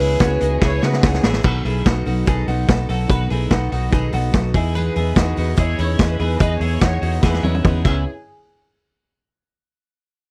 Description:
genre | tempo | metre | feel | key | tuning
jangly indie pop | 145 BPM | 4/4 | straight | unclear | A4 = 440 Hz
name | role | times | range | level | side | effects
warbly nostalgic lead | melody | 0.0-1.2 s | B4 | -24 LUFS | equal | chorus, slapback echo
dark upright piano | accompaniment | 0.0-8.1 s | D#4 to F#5 | -32 LUFS | equal | none
picked steel-string acoustic guitar | accompaniment | 0.0-8.0 s | B2 to A4 | -30 LUFS | equal | none
twelve-string electric guitar | arpeggios | 0.0-8.0 s | C#4 to B4 | -29 LUFS | equal | subtle chorus, slapback echo
vintage muted fingered electric bass | bass | 0.0-8.0 s | A1 to C#3 | -23 LUFS | equal | none
dark symphonic violin section | second line | 0.2-1.4, 4.8-8.0 s | G#4 to D#5 | -32 LUFS | equal | none
vintage drum kit | drums | 0.2-7.9 s | crash cymbal, hi-hat, kick drum, snare drum, toms | -20 LUFS | equal | none
room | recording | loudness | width
little or no reverb | dry, close 1970s-style studio recording | -18 LUFS | mono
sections
0.0-1.4 A section; 1.4-8.1 B section; 8.1-9.7 C section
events
drum fill 0.6-1.4, 7.2-8.1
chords
0.0 C#m7; 1.4 B7; 4.5 Emaj7; 7.8 C#m7; 8.1 N.C.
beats
0.21 0.62 1.03 | 1.45 1.86 2.27 2.69 | 3.10 3.51 3.92 4.34 | 4.75 5.17 5.58 5.99 | 6.40 6.82 7.23 7.64 | 8.06

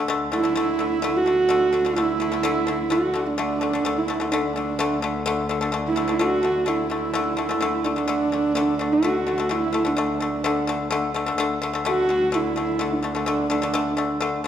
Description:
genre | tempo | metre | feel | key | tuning
mongolian traditional | 127 BPM | 4/4 | straight | D gong mode | A4 = 440 Hz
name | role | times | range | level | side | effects
pipa | arpeggios | 0.0-14.5 s | D3 to A3 | -24 LUFS | left 4 dB | none
rich cello | drone | 0.1-14.5 s | D2 | -33 LUFS | left 2 dB | none
dark horsehead fiddle | melody | 0.3-14.5 s | D4 to F#4 | -23 LUFS | right 3 dB | none
room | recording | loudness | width
wet recital hall reverb, RT60 1.4 s | none | -20 LUFS | side -9 dB against mid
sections
0.1-14.5 A section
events
none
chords
0.1 D5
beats
| 0.09 0.56 1.03 1.50 | 1.97 2.44 2.91 3.38 | 3.85 4.32 4.79 5.26 | 5.74 6.21 6.68 7.15 | 7.62 8.09 8.56 9.03 | 9.50 9.97 10.45 10.91 | 11.39 11.86 12.33 12.80 | 13.27 13.74 14.21

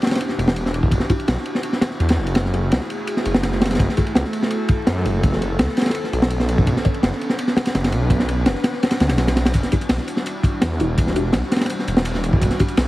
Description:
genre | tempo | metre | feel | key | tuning
drum and bass, jungle | 167 BPM | 4/4 | straight | E dorian | A4 = 435 Hz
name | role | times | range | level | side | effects
airy breathy pad | sustained chords | 0.0-12.9 s | G3 to B4 | -26 LUFS | equal | chorus
crunchy breakbeat drum kit | drums | 0.0-12.9 s | kick drum, ride cymbal, snare drum | -19 LUFS | equal | none
detuned saw bass | bass | 0.4-12.9 s | E1 to F#2 | -21 LUFS | equal | none
filtered dub chord stab | stabs | 1.1-12.6 s | D4 to D5 | -28 LUFS | left 1 dB | phaser, wide subtle chorus, dub echo
dusty soul sampler-style drum kit | drums | 9.5-12.9 s | hi-hat, snare drum | -36 LUFS | equal | high-pass filter on hats, high-pass filter on snare
room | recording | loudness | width
light reverb, small room ambience | heavily compressed radio sound, vinyl crackle | -17 LUFS | side -17 dB against mid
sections
0.0-12.9 A section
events
none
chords
0.0 Em9; 2.4 F#m9; 5.9 Bm9; 9.5 Em9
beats
0.20 0.56 | 0.92 1.28 1.64 2.00 | 2.36 2.71 3.07 3.43 | 3.79 4.15 4.51 4.87 | 5.23 5.59 5.95 6.31 | 6.67 7.03 7.39 7.75 | 8.10 8.46 8.82 9.18 | 9.54 9.90 10.26 10.62 | 10.98 11.34 11.70 12.06 | 12.42 12.78

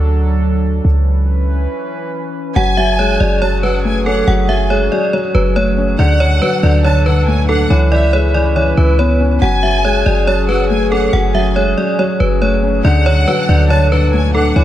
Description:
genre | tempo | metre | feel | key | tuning
hip hop | 140 BPM | 4/4 | half-time | F# minor | A4 = 443 Hz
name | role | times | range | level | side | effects
warbly tape-like pad | sustained chords | 0.0-14.6 s | E3 to B4 | -22 LUFS | right 1 dB | chorus, built-in reverb
clean 808-style bass | bass | 0.0-14.6 s | F#1 to D2 | -14 LUFS | equal | none
metallic FM bell | melody | 2.6-14.6 s | A4 to F#5 | -17 LUFS | right 2 dB | chorus, tremolo, digital delay
warm symphonic violin section | second line | 2.6-14.5 s | E5 to A5 | -21 LUFS | equal | digital delay
felt-muted upright piano | accompaniment | 2.6-14.6 s | D3 to D4 | -18 LUFS | left 4 dB | none
room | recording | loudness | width
small room ambience | none | -11 LUFS | side -12 dB against mid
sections
0.0-2.6 A section; 2.6-14.6 B section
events
break 0.0-2.6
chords
0.0 D; 0.8 C#m7; 2.6 F#madd9; 6.0 D; 7.7 C#m7; 9.4 F#madd9; 12.8 D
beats
0.42 | 0.85 1.27 1.70 2.13 | 2.56 2.99 3.42 3.85 | 4.27 4.70 5.13 5.56 | 5.99 6.42 6.85 7.27 | 7.70 8.13 8.56 8.99 | 9.42 9.85 10.27 10.70 | 11.13 11.56 11.99 12.42 | 12.85 13.27 13.70 14.13 | 14.56

